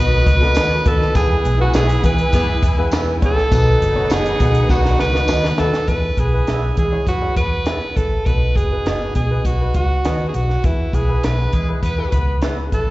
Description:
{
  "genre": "uptempo 1960s-style soul",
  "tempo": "101 BPM",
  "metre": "4/4",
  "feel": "straight",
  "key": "E major",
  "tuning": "A4 = 437 Hz",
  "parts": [
    { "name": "edgy alto saxophone", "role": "melody", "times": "0.0-12.9 s", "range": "E4 to B4", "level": "-21 LUFS", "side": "right 2 dB", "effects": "analog delay" },
    { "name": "clear studio string section", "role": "second line", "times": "0.0-5.9 s", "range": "D#4 to B5", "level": "-27 LUFS", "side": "equal", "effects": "slapback echo" },
    { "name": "clear upright piano", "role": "accompaniment", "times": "0.0-12.8 s", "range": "B2 to C#5", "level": "-27 LUFS", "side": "left 3 dB", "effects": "slapback echo" },
    { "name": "overdriven tonewheel organ", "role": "sustained chords", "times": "0.0-5.9 s", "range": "D#3 to E4", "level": "-30 LUFS", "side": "equal", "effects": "none" },
    { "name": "vintage muted fingered electric bass", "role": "bass", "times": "0.0-12.9 s", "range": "F#1 to E3", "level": "-19 LUFS", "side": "equal", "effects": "none" },
    { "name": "compact cocktail drum kit", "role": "drums", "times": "0.3-12.9 s", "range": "hi-hat, kick drum, snare drum", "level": "-20 LUFS", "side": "equal", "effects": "none" },
    { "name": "tambourine", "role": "percussion", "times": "0.5-5.4 s", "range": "none", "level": "-36 LUFS", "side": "left 2 dB", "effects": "none" },
    { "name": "electric guitar through a small old amp", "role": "stabs", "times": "0.6-12.6 s", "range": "F#4 to E5", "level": "-28 LUFS", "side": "right 4 dB", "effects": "analog chorus, slapback echo, analog delay" },
    { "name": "warm horn section", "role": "second line", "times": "2.0-12.4 s", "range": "E3 to B4", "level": "-28 LUFS", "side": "equal", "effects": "slapback echo" }
  ],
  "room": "light reverb",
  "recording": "live gig heard through the venue's PA, recital hall reverb, nothing above 7.7 kHz",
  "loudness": "-15 LUFS",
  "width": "side -18 dB against mid",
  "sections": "0.0-5.9 A section; 5.9-12.9 B section",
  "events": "drum fill 4.7-5.9",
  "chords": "0.0 B; 1.2 E; 3.5 B; 5.9 E; 8.3 B; 10.6 E",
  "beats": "0.56 | 1.15 1.74 2.33 2.93 | 3.52 4.11 4.70 5.29 | 5.89 6.48 7.07 7.67 | 8.26 8.86 9.45 10.05 | 10.64 11.24 11.83 12.43"
}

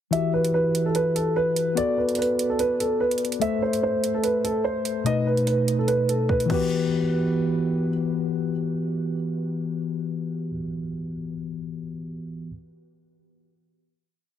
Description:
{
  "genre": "hip hop, drill",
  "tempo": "146 BPM",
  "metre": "4/4",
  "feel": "half-time",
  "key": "E minor",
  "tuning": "A4 = 438 Hz",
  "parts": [
    { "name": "dark concert grand piano", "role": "melody", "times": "0.1-7.9 s", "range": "A4 to E5", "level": "-25 LUFS", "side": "right 1 dB", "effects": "digital delay" },
    { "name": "mellow tine electric piano", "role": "accompaniment", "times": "0.1-12.5 s", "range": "B2 to E5", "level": "-25 LUFS", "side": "moving between left 8 dB and right 3 dB", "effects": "auto-pan" },
    { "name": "drill drum kit", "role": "drums", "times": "0.1-6.6 s", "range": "crash cymbal, hi-hat, kick drum", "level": "-31 LUFS", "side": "right 2 dB", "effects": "none" }
  ],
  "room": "light reverb",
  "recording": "dense, heavily limited modern master",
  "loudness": "-22 LUFS",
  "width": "side -10 dB against mid",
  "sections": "0.1-6.7 breakdown; 6.7-10.0 final hit",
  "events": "drum fill 6.3-6.7",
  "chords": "0.1 Emadd9; 1.8 Bm7; 3.4 Am; 5.1 B7; 6.5 Emadd9",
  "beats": "| 0.13 0.54 0.95 1.36 | 1.77 2.18 2.59 3.00 | 3.42 3.83 4.24 4.65 | 5.06 5.47 5.88 6.29 | 6.70 7.11 7.53 7.94 | 8.35 8.76 9.17 9.58"
}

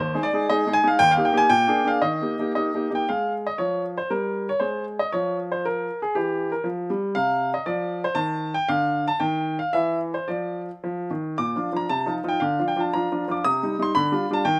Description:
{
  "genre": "classical-period piano sonatina",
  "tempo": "116 BPM",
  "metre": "2/4",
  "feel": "rubato",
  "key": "Eb major, Bb major from 7.2 s",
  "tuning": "A4 = 444 Hz",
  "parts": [
    { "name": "clear baby grand piano", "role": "solo", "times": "0.0-14.6 s", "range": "Eb2 to Eb6", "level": "-24 LUFS", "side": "equal", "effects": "none" }
  ],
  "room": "light reverb",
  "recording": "none",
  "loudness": "-24 LUFS",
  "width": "mono",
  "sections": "0.0-3.1 A section; 3.1-11.4 B section; 11.4-14.6 C section",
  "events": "none",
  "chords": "0.0 Ab5/Eb; 1.0 Eb; 1.5 Bb7; 2.0 Eb; 3.1 Fm7; 4.1 N.C.; 6.7 Fsus2; 7.2 N.C.; 10.8 Ebsus2; 11.4 Bb; 11.9 F7/C; 12.4 Dm; 13.4 Cm; 14.0 G7/D",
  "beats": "0.49 | 0.99 1.50 | 2.02 2.55 | 3.08 3.59 | 4.11 4.62 | 5.14 5.66 | 6.16 6.66 | 7.17 7.67 | 8.17 8.69 | 9.21 9.73 | 10.28 10.83 | 11.37 11.89 | 12.41 12.92 | 13.45 13.95 | 14.45"
}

